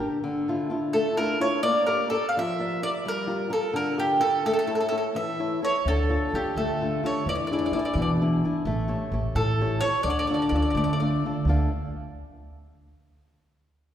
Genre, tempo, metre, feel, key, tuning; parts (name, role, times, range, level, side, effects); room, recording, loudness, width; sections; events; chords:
italian folk, Italian serenade; 85 BPM (dotted quarters); 6/8; straight; D harmonic minor; A4 = 440 Hz
flamenco guitar; accompaniment; 0.0-11.7 s; B2 to F5; -28 LUFS; left 2 dB
mandolin; melody; 0.9-11.1 s; G4 to F5; -26 LUFS; right 1 dB
upright bass; bass; 5.9-11.7 s; A1 to E3; -27 LUFS; right 1 dB
wet concert hall reverb, RT60 2.1 s; heard from further back in the room; -23 LUFS; side -10 dB against mid
0.2-11.5 A section; 11.5-12.9 B section
0.2 Dmadd9; 1.6 Bb6; 3.0 Gm7; 4.4 A; 5.9 Dm; 7.3 E7; 8.7 A7; 10.0 Dm